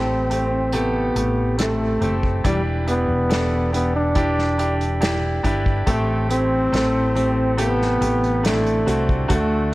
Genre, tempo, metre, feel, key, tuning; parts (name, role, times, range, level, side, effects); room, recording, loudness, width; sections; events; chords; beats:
pop ballad; 70 BPM; 4/4; straight; A4 = 440 Hz
clear trombone; melody; 0.0-9.7 s; G3 to D4; -22 LUFS; equal
clear concert grand piano; accompaniment; 0.0-9.7 s; A2 to A4; -24 LUFS; right 1 dB
fingerpicked steel-string acoustic guitar; arpeggios; 0.0-9.7 s; A2 to B4; -31 LUFS; left 4 dB; digital delay
fretless electric bass; bass; 0.0-9.7 s; E1 to D2; -24 LUFS; equal
unplugged drum kit; drums; 0.3-9.5 s; hi-hat, kick drum, snare drum; -25 LUFS; equal
light reverb, studio ambience; worn, warbling old tape, cassette tape, warbly pitch drift; -18 LUFS; side -18 dB against mid
0.0-9.7 A section
0.0 Am7; 2.4 Em7; 5.9 Am7
0.73 1.59 | 2.44 3.30 4.16 5.02 | 5.87 6.73 7.59 8.45 | 9.30